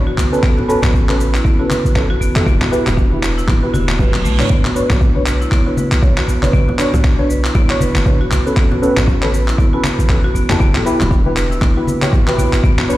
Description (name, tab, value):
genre	afro house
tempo	118 BPM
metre	4/4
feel	swing 58% on 16ths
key	unclear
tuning	A4 = 439 Hz
part	deep mellow chord stab	stabs	0.0-13.0 s	C#4 to C#5	-20 LUFS	equal	chorus, phaser, cassette tape, sidechain pumping, ping-pong delay
part	warm 808-style bass	bass	0.0-12.7 s	E1 to E2	-18 LUFS	equal	sidechain pumping
part	marimba with hard mallets	arpeggios	0.1-13.0 s	A3 to B4	-20 LUFS	equal	sidechain pumping, ping-pong delay
part	deep house drum kit	drums	0.2-13.0 s	cabasa, handclaps, toms	-22 LUFS	equal	overdrive
part	congas	percussion	0.2-12.9 s	none	-22 LUFS	left 1 dB	none
part	electronic kick drum	drums	0.4-12.8 s	none	-15 LUFS	equal	overdrive
part	reverse cymbal	sound effects	3.7-4.5 s	none	-29 LUFS	right 6 dB	none
room	light reverb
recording	played on a big sound system in a bare room, large studio reverb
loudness	-12 LUFS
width	side -16 dB against mid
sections	0.0-13.0 A section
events	reverse cymbal 3.7-4.5; drum fill 4.0-4.5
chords	0.4 Aadd9; 2.5 Em; 4.5 Bmadd9; 8.6 Aadd9; 10.6 Em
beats	| 0.43 0.94 1.45 1.96 | 2.47 2.98 3.48 3.99 | 4.50 5.01 5.52 6.03 | 6.54 7.04 7.55 8.06 | 8.57 9.08 9.59 10.10 | 10.60 11.11 11.62 12.13 | 12.64